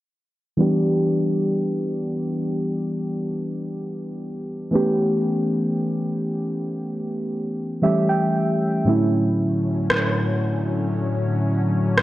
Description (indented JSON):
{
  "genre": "contemporary R&B",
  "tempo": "58 BPM",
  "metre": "4/4",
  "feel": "straight",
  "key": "unclear",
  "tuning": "A4 = 439 Hz",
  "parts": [
    { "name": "muted felt-like synth keys", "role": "accompaniment", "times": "0.6-12.0 s", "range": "A2 to G5", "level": "-21 LUFS", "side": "equal", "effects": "chorus, low-pass filter" },
    { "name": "lush unison pad", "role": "sustained chords", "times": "9.4-12.0 s", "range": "A2 to C#4", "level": "-26 LUFS", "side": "left 1 dB", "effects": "chorus, phaser, low-pass filter" },
    { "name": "electronic rim click", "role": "drums", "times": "9.9-12.0 s", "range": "none", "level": "-21 LUFS", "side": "equal", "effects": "none" }
  ],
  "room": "moderate lush hall reverb, RT60 2.7 s",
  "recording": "worn, warbling old tape, cassette tape, warbly pitch drift",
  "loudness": "-20 LUFS",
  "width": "side -16 dB against mid",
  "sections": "0.6-12.0 A section",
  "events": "filter sweep 0.6-12.0; synth keys fill 7.3-8.9",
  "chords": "0.6 Em7; 4.7 A9; 7.8 A7; 8.9 Dmaj9/A"
}